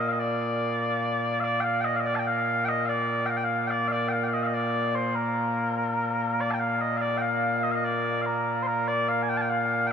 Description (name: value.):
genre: scottish traditional, Scottish pipe music.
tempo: 97 BPM (dotted quarters).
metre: 6/8.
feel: straight.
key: Bb major.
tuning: A4 = 441 Hz.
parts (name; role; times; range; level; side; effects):
mellow small bagpipes; solo; 0.0-9.9 s; Bb2 to A5; -24 LUFS; equal; none.
room: wet huge ambient reverb, RT60 4.1 s.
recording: heard from further back in the room.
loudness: -24 LUFS.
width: side -7 dB against mid.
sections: 0.0-6.4 A section; 6.4-9.9 A section.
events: none.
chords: none.